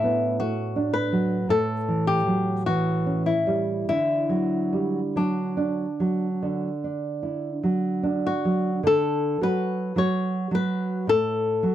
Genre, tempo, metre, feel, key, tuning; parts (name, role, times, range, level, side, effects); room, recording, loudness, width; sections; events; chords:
romantic duo for nylon-string guitar and classical guitar; 46-56 BPM; 4/4; rubato; D major; A4 = 441 Hz
flamenco guitar; melody; 0.0-11.7 s; D4 to C#5; -25 LUFS; left 4 dB
nylon-string guitar; accompaniment; 0.0-11.7 s; A2 to F#4; -24 LUFS; right 2 dB
light reverb; dry, close 1970s-style studio recording; -22 LUFS; side -12 dB against mid
0.0-8.9 A section; 8.9-11.7 B section
0.0 D/A; 1.5 A7; 3.9 D